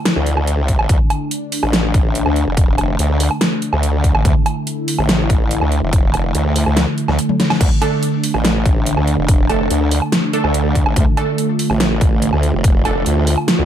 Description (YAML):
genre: heavy wobble dubstep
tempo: 143 BPM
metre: 4/4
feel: half-time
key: D minor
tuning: A4 = 440 Hz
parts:
  - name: lush unison pad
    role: sustained chords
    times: 0.0-13.7 s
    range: D3 to F4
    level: -20 LUFS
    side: right 1 dB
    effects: chorus, sidechain pumping
  - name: dubstep drum kit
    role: drums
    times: 0.1-13.6 s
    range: crash cymbal, hi-hat, snare drum, toms, woodblock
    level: -20 LUFS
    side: equal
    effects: overdrive
  - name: formant-sweep wobble bass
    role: bass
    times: 0.2-13.7 s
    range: F1 to D2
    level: -17 LUFS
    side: equal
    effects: chorus, overdrive
  - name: electronic kick drum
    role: drums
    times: 0.7-12.7 s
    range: none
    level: -15 LUFS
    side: equal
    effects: none
  - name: orchestra-hit-like synth stab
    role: stabs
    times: 7.8-13.0 s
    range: A3 to A4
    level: -23 LUFS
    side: right 4 dB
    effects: built-in reverb, ping-pong delay
room: digital ambience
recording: dark, warm production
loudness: -14 LUFS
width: side -10 dB against mid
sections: 0.0-13.7 A section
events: drum fill 7.3-7.6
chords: 0.0 D5